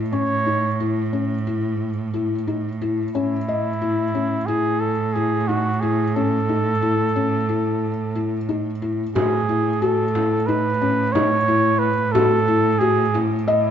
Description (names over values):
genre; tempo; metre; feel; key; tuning
contemporary instrumental, chamber music in an uneven meter; 180 BPM (eighths); 9/8; straight; A lydian; A4 = 440 Hz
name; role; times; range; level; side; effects
rich cello; bass; 0.0-13.7 s; A2; -24 LUFS; right 4 dB; none
warm flugelhorn; melody; 0.1-13.7 s; E4 to C#5; -22 LUFS; right 2 dB; none
felt-muted upright piano; arpeggios; 0.1-13.7 s; C#4 to D#5; -23 LUFS; left 6 dB; none
frame drum; percussion; 9.2-13.5 s; none; -29 LUFS; right 4 dB; none
room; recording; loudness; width
light reverb; nothing above 7.8 kHz; -18 LUFS; side -8 dB against mid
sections
0.0-9.2 A section; 9.2-13.7 B section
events
none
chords
0.0 A; 9.2 Amaj7sus2